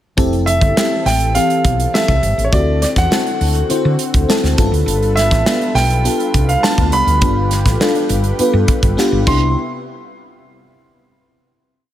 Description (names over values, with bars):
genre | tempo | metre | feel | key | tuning
polished 1980s jazz-funk pop | 102 BPM | 4/4 | straight | unclear | A4 = 441 Hz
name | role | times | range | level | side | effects
FM electric piano with soft pad layer | accompaniment | 0.2-9.6 s | E3 to C5 | -18 LUFS | left 2 dB | lush chorus
lush unison pad | sustained chords | 0.2-9.5 s | C3 to B4 | -27 LUFS | equal | chorus
woody fretless electric bass | bass | 0.2-9.5 s | F1 to D3 | -16 LUFS | equal | none
modern studio drum kit | drums | 0.2-9.4 s | crash cymbal, hi-hat, kick drum, snare drum | -18 LUFS | equal | gated reverb
clear concert grand piano | melody | 0.5-9.5 s | Db5 to C6 | -18 LUFS | right 2 dB | digital delay
room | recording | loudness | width
light reverb, small room ambience | none | -12 LUFS | side -12 dB against mid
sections
0.2-9.6 pre-chorus; 9.6-11.9 final hit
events
drum fill 9.0-9.6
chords
0.2 Fmaj7; 2.5 D7; 4.6 G9; 9.3 Cmaj7; 9.6 N.C.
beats
| 0.17 0.76 1.35 1.94 | 2.52 3.11 3.70 4.29 | 4.87 5.46 6.05 6.63 | 7.22 7.81 8.39 8.98 | 9.57